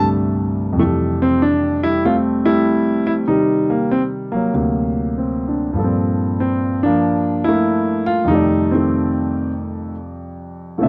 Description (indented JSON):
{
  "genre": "solo jazz",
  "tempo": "96 BPM",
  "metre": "4/4",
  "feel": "swing 66% on 8ths",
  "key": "F major",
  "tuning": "A4 = 440 Hz",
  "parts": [
    { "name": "warm grand piano", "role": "solo", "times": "0.0-10.9 s", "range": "C2 to E5", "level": "-18 LUFS", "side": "equal", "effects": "none" }
  ],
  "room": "light reverb",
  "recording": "dry, close 1970s-style studio recording",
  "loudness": "-18 LUFS",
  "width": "mono",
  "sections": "0.8-10.9 A section",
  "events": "none",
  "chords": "0.0 C13; 0.8 Fmaj9; 3.3 Cm7; 4.5 D7b13; 5.8 Gm11; 8.3 F13"
}